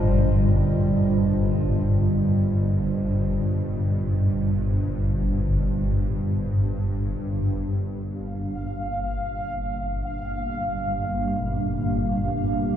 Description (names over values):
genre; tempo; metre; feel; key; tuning
dark ambient drone; free time; none; none; G minor; A4 = 440 Hz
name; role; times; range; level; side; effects
dark analog pad; sustained chords; 0.0-12.8 s; G3 to F5; -33 LUFS; right 1 dB; chorus
quartz singing bowl; arpeggios; 0.0-4.9, 11.4-12.8 s; Bb2 to C5; -29 LUFS; right 2 dB; tape echo
swarming drone; drone; 0.0-12.8 s; G1 to G2; -23 LUFS; equal; built-in reverb
bubbling stepped-filter texture; texture; 8.3-12.8 s; F5; -30 LUFS; equal; chorus, built-in reverb
room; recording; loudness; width
light reverb, small room ambience; dark, warm production, nothing above 7.6 kHz; -22 LUFS; side -10 dB against mid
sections
0.0-8.0 A section; 8.0-12.8 B section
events
fade-out on analog synth pad 0.0-8.0; filter sweep on synth drone 0.0-8.0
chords
0.0 Ebadd9/G; 8.0 Gm7